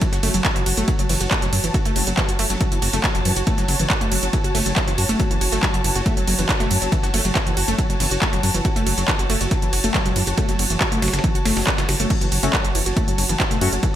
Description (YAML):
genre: driving peak-time techno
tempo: 139 BPM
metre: 4/4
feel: straight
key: F# minor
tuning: A4 = 441 Hz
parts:
  - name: wide unison pluck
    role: riff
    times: 0.0-13.9 s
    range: E3 to F#4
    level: -26 LUFS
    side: equal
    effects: sidechain pumping, ping-pong delay
  - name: dusty soul sampler-style drum kit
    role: drums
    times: 0.0-13.9 s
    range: hi-hat, ride cymbal, snare drum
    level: -32 LUFS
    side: right 1 dB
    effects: none
  - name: electronic kick drum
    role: drums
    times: 0.0-13.9 s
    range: none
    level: -22 LUFS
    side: equal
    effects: none
  - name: techno drum kit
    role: drums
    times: 0.0-13.9 s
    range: crash cymbal, handclaps, hi-hat, ride cymbal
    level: -23 LUFS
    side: right 1 dB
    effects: sidechain pumping on hats, sidechain pumping on cymbals, gated reverb
  - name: muted studio string section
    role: texture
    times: 0.0-14.0 s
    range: F#4 to A5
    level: -28 LUFS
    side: left 1 dB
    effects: sidechain pumping
  - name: dark detuned saw bass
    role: bass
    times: 0.1-13.8 s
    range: E1 to F#2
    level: -24 LUFS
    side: equal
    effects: sidechain pumping
  - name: sync-sweep polysynth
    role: stabs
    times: 12.4-13.7 s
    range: A3 to F#4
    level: -27 LUFS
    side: left 5 dB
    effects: chorus, sidechain pumping, digital delay
room: light reverb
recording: bright 1980s-style digital production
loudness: -17 LUFS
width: side -11 dB against mid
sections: 0.0-14.0 A section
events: none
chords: 0.0 F#m